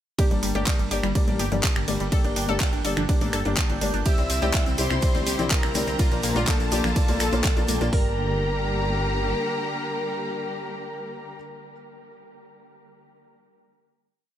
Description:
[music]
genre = progressive house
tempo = 124 BPM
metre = 4/4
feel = straight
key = G dorian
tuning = A4 = 440 Hz
[part]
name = glassy wavetable pluck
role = arpeggios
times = 0.2-11.4 s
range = G3 to Bb4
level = -31 LUFS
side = right 1 dB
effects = chorus, sidechain pumping, digital delay
[part]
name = felt-muted upright piano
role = stabs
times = 0.2-11.4 s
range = Bb3 to D5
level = -31 LUFS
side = left 4 dB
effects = sidechain pumping, digital delay
[part]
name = pop drum kit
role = drums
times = 0.2-8.0 s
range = hi-hat, kick drum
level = -23 LUFS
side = equal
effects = none
[part]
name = pop drum kit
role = drums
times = 0.2-7.9 s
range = finger snaps, handclaps, hi-hat, ride cymbal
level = -29 LUFS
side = right 1 dB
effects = sidechain pumping on hats, sidechain pumping on cymbals
[part]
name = backwards swelling texture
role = texture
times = 1.0-7.9 s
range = G5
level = -41 LUFS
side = right 2 dB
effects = none
[part]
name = dark detuned saw bass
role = bass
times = 0.3-9.3 s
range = G1 to D2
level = -28 LUFS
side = equal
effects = sidechain pumping
[part]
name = congas and bongos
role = percussion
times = 0.6-7.8 s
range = none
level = -35 LUFS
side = left 5 dB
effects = none
[part]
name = soft octave-layered synth lead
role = melody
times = 4.1-11.4 s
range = A4 to E5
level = -32 LUFS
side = left 1 dB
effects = chorus, dub echo
[part]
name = soft supersaw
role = second line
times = 4.1-11.4 s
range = A5 to E6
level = -34 LUFS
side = right 1 dB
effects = sidechain pumping, digital delay
[part]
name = warm studio string section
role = sustained chords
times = 4.1-11.4 s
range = D3 to G4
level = -33 LUFS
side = left 1 dB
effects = sidechain pumping
[part]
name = tube shaker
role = percussion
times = 4.1-7.9 s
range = none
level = -36 LUFS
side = left 3 dB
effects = none
[sound]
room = little or no reverb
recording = none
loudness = -21 LUFS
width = side -11 dB against mid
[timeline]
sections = 0.2-7.9 drop; 7.9-11.8 final chord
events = drop 0.2-7.9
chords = 0.2 Gm; 4.1 Cadd9; 6.0 Bb; 7.9 Gm

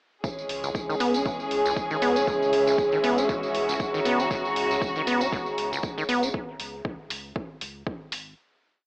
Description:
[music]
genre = acid house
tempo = 118 BPM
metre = 4/4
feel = swing 56% on 16ths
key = C# dorian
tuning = A4 = 440 Hz
[part]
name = clear studio string section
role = sustained chords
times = 0.2-6.3 s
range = E3 to G#4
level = -28 LUFS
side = equal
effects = sidechain pumping, cassette tape
[part]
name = acid bass, saw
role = riff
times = 0.2-6.3 s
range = C#2 to C#4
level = -28 LUFS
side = equal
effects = tube saturation, cassette tape, tape echo
[part]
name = electronic kick drum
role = drums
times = 0.2-8.0 s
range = none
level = -33 LUFS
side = equal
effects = overdrive, cassette tape
[part]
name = tambourine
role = percussion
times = 0.2-6.3 s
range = none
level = -36 LUFS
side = right 2 dB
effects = none
[part]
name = warbly tape-like pad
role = texture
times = 0.9-6.3 s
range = C#4 to A#5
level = -29 LUFS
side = equal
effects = chorus, built-in reverb, sidechain pumping, cassette tape
[part]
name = warm sub bass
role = bass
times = 0.5-8.3 s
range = G#1 to C#2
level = -46 LUFS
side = equal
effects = sidechain pumping
[part]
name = electronic hi-hat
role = drums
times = 0.5-8.2 s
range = none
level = -34 LUFS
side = equal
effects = overdrive, cassette tape
[part]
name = vibraphone with medium hard mallets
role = melody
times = 2.3-3.0 s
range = G#4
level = -26 LUFS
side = right 1 dB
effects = cassette tape, tape echo
[sound]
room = moderate studio reverb, RT60 0.7 s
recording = home recording on cassette, AM radio sound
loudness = -23 LUFS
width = side -26 dB against mid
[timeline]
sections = 0.2-8.4 groove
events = none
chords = 0.2 C#m

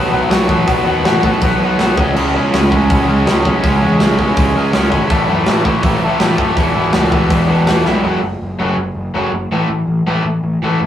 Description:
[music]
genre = punk rock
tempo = 162 BPM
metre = 4/4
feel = straight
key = unclear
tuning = A4 = 440 Hz
[part]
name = crunchy overdriven guitar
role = riff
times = 0.0-10.8 s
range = A2 to F#4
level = -20 LUFS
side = right 3 dB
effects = none
[part]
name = overdriven electric guitar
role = riff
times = 0.0-10.8 s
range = E2 to C#4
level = -16 LUFS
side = left 2 dB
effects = none
[part]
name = sludgy distorted guitar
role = riff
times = 0.0-8.0 s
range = E2 to C#4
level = -20 LUFS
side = right 1 dB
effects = overdrive
[part]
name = fuzz picked electric bass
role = bass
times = 0.0-10.9 s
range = E1 to B2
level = -20 LUFS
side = left 1 dB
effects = overdrive
[part]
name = big rock drum kit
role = drums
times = 0.3-7.9 s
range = crash cymbal, hi-hat, kick drum, snare drum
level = -17 LUFS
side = equal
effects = none
[sound]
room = moderate small room ambience, RT60 0.5 s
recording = rough rehearsal-room recording, tube saturation, small room ambience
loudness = -12 LUFS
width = side -10 dB against mid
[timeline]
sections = 0.0-8.0 A section; 8.0-10.9 B section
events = drum fill 7.9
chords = 0.0 B; 2.0 C#m; 5.1 A; 6.6 E; 8.0 F#m; 9.5 A

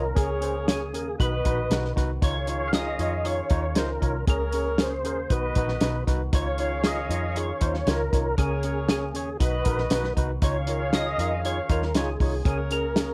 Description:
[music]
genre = uptempo 1960s-style soul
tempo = 117 BPM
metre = 4/4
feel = straight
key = Db major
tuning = A4 = 440 Hz
[part]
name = percussive tonewheel organ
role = melody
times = 0.0-13.1 s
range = Ab4 to F5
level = -32 LUFS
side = equal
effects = chorus vibrato, slow rotary speaker
[part]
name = overdriven tine electric piano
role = accompaniment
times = 0.0-13.1 s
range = Cb3 to Db5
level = -34 LUFS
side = equal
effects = none
[part]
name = percussive tonewheel organ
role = sustained chords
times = 0.0-13.1 s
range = Db3 to Ab4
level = -42 LUFS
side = equal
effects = none
[part]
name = vintage muted picked electric bass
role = bass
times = 0.0-13.1 s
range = Bb1 to F2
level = -32 LUFS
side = equal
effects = none
[part]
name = mellow horn section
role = second line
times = 0.2-13.1 s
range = Gb4 to F5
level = -36 LUFS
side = equal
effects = none
[part]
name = warm soul drum kit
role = drums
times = 0.2-13.1 s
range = hi-hat, kick drum, snare drum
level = -28 LUFS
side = equal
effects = none
[sound]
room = light reverb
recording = none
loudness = -26 LUFS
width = mono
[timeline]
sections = 0.0-13.1 A section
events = none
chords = 0.2 Bbm7/Db; 1.2 Cb; 2.2 Dbadd9; 4.3 Bbm7/Db; 5.3 Cb; 6.3 Dbadd9; 8.4 Bbm7/Db; 9.4 Cb; 10.4 Dbadd9; 12.5 Bbm7/Db

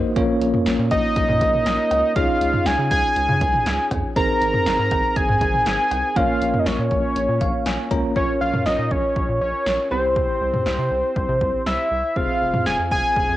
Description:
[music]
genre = synth-pop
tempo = 120 BPM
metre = 4/4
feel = straight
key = Bb minor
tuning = A4 = 439 Hz
[part]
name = bell-like tine electric piano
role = accompaniment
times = 0.0-13.4 s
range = Bb3 to Bb5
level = -24 LUFS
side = equal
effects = medium stereo tremolo
[part]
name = rubbery square bass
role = bass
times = 0.0-13.4 s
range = F1 to Db3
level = -27 LUFS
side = equal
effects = none
[part]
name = punchy analog drum machine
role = drums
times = 0.2-13.3 s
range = cowbell, hi-hat, kick drum, snare drum, toms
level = -25 LUFS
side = equal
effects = cassette tape
[part]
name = fat analog lead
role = melody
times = 0.9-13.4 s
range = C5 to Bb5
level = -20 LUFS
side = equal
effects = cassette tape
[sound]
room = wet spring reverb, RT60 2.1 s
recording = home recording on cassette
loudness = -18 LUFS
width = side -14 dB against mid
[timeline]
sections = 0.0-8.2 A section; 8.2-13.4 B section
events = tine electric piano fill 0.0, 7.2-8.2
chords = 0.2 Bbm; 2.2 Dbadd9; 4.2 Abadd9; 6.2 Bbm; 9.9 C; 12.2 Fm

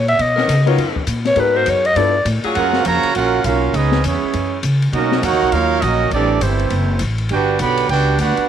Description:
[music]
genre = jazz, big band swing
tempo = 203 BPM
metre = 4/4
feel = swing 62% on 8ths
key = F# major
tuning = A4 = 440 Hz
[part]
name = growling clarinet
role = melody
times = 0.0-2.3 s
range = B4 to E5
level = -16 LUFS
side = left 1 dB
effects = none
[part]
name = upright bass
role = bass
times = 0.0-8.4 s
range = F#1 to C#3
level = -19 LUFS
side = left 1 dB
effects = none
[part]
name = open jazz drum kit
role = drums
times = 0.1-8.4 s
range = hi-hat, kick drum, ride cymbal, snare drum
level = -26 LUFS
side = left 7 dB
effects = none
[part]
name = clear saxophone section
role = sustained chords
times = 0.4-2.8 s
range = D#3 to A#4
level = -24 LUFS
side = left 2 dB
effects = none
[part]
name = warm grand piano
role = accompaniment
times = 0.7-2.1 s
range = B3 to C#5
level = -22 LUFS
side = left 16 dB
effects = none
[part]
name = dark trombone section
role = second line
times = 2.5-8.5 s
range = C#3 to G4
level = -20 LUFS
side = right 10 dB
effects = none
[part]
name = clear trumpet section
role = melody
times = 2.6-8.5 s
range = A3 to B5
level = -19 LUFS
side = right 3 dB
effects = none
[sound]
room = light reverb, small room ambience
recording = 1960s-style stereo with parts hard left and right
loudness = -14 LUFS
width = side -9 dB against mid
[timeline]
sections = 0.0-2.6 A section; 2.6-8.5 B section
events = clarinet solo 0.0-2.6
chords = 0.2 Bmaj9; 1.4 G#m9; 2.0 G13; 2.6 F#maj7; 3.7 C#m7; 4.3 F#5; 4.9 Bmaj9; 6.1 Am7; 6.7 F#m7b5; 7.3 Gmaj7

